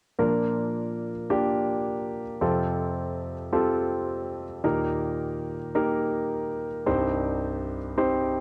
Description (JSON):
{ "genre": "pop", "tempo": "108 BPM", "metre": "4/4", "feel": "straight", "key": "Bb major", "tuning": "A4 = 439 Hz", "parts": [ { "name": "warm grand piano", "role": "accompaniment", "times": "0.2-8.4 s", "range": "C2 to C5", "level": "-28 LUFS", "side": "equal", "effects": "none" } ], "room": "moderate studio reverb, RT60 0.5 s", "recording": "home recording on cassette", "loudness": "-28 LUFS", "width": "mono", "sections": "0.2-8.4 A section", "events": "none", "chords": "0.2 Bb; 2.4 Fadd9; 4.6 Eb; 6.9 Cm" }